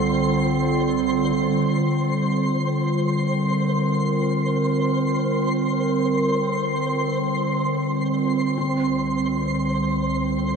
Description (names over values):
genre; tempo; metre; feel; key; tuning
ambient; free time; none; none; unclear; A4 = 441 Hz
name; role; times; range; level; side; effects
warbly tape-like pad; sustained chords; 0.0-10.6 s; C2 to Bb4; -21 LUFS; right 1 dB; chorus, built-in reverb
felt-muted upright piano; arpeggios; 0.0-10.6 s; C4 to F4; -36 LUFS; left 3 dB; none
twinkling granular texture; texture; 0.0-10.6 s; C5 to C6; -26 LUFS; equal; built-in reverb
room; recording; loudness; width
wet huge ambient reverb, RT60 9.1 s; nothing above 10.4 kHz; -20 LUFS; side -6 dB against mid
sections
0.0-1.4 A section; 1.4-10.6 B section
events
filter sweep on ambient pad 1.4-10.6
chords
0.0 Dm7/C; 1.4 C5; 8.6 Dm7/C